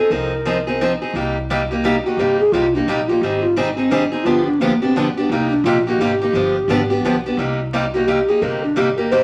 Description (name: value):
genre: acoustic string swing (jazz manouche)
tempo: 173 BPM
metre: 3/4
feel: swing 61% on 8ths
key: C minor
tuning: A4 = 439 Hz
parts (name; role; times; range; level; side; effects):
- breathy bass ocarina; melody; 0.0-9.2 s; Bb3 to C5; -20 LUFS; equal; none
- picked steel-string acoustic guitar; accompaniment; 0.0-9.2 s; C3 to Ab4; -21 LUFS; equal; none
- upright bass; bass; 0.1-9.2 s; G1 to C2; -31 LUFS; equal; none
room: wet studio reverb, RT60 0.8 s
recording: vinyl crackle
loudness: -18 LUFS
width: mono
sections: 0.0-7.4 A section; 7.4-9.2 A section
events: ocarina solo 0.0-9.2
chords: 0.0 Fm7; 1.1 Cm7; 3.2 Abmaj7; 4.3 G7; 5.3 Cm7; 6.3 G7b9; 7.4 Cm7